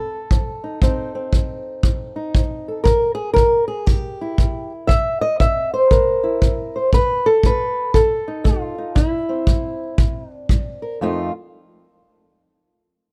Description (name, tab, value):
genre	acoustic country blues, solo or duo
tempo	118 BPM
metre	4/4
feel	swing 63% on 8ths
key	unclear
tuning	A4 = 439 Hz
part	fingerpicked old ladder-braced acoustic guitar	melody	0.0-11.3 s	F2 to E5	-22 LUFS	equal	none
part	kick drum	drums	0.3-10.6 s	none	-20 LUFS	equal	none
room	little or no reverb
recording	close, detailed microphones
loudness	-19 LUFS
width	mono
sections	0.0-11.0 A section; 11.0-13.0 B section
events	none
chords	0.0 F7; 2.9 C7; 6.9 F7; 9.0 C; 11.0 N.C.